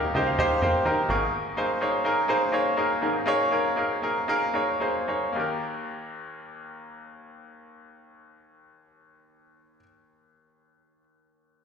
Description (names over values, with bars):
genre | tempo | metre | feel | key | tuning
pop | 108-127 BPM | 4/4 | straight | unclear | A4 = 440 Hz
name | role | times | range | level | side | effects
bright grand piano | accompaniment | 0.0-11.6 s | Eb2 to Db6 | -24 LUFS | equal | slapback echo
plucky analog bass | bass | 0.0-1.3 s | Ab1 to F2 | -30 LUFS | equal | none
downlifter | sound effects | 0.1-1.3 s | none | -44 LUFS | right 2 dB | none
room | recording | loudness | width
moderate club reverb, RT60 0.5 s | live gig heard through the venue's PA, recital hall reverb | -23 LUFS | side -6 dB against mid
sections
0.0-5.4 A section; 5.4-9.8 B section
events
grand piano fill 0.0-1.3; slowing down 1.3-5.4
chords
0.0 Eb; 1.1 Absus2; 5.4 Eb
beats
0.38 0.86 | 1.33 1.81 2.29 2.77 | 3.26 3.77 4.29 4.82 | 5.37 5.92 6.48 7.04 | 7.60 8.15 8.71 9.27